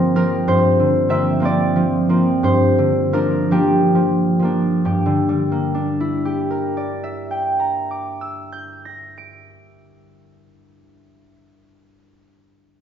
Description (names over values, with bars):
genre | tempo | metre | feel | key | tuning
classical, solo harp piece | 42-64 BPM (dotted quarters) | 6/8 | rubato | G dorian | A4 = 440 Hz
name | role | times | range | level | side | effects
concert harp | solo | 0.0-11.3 s | G2 to D7 | -16 LUFS | equal | none
room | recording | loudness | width
wet recital hall reverb, RT60 1.3 s | heard from further back in the room, nothing above 7.6 kHz | -16 LUFS | side -8 dB against mid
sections
0.0-4.9 A section; 4.9-9.8 B section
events
slowing down 0.0-4.9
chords
0.0 Bb69/G; 4.9 Gm6